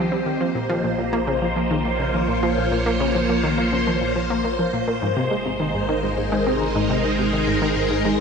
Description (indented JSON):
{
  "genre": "ambient, sequencer-driven space music",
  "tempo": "104 BPM",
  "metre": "4/4",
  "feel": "straight",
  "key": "Bb dorian",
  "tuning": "A4 = 440 Hz",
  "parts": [
    { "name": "phased string machine", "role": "sustained chords", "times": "0.0-8.2 s", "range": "Ab3 to Eb5", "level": "-22 LUFS", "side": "equal", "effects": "ensemble chorus, phaser" },
    { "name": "analog pluck", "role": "riff", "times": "0.0-8.2 s", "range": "Ab2 to C4", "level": "-23 LUFS", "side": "equal", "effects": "chorus, analog delay" },
    { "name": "round analog bass", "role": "bass", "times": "0.0-8.2 s", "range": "Ab1 to C2", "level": "-30 LUFS", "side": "equal", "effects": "none" }
  ],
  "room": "wet spring reverb, RT60 2.7 s",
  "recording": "echo-heavy mix",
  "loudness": "-19 LUFS",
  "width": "side -6 dB against mid",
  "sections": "0.0-8.2 A section",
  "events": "none",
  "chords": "0.4 Bbm; 5.0 Ab",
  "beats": "| 0.41 0.98 1.56 2.14 | 2.71 3.29 3.87 4.45 | 5.02 5.60 6.18 6.75 | 7.33 7.91"
}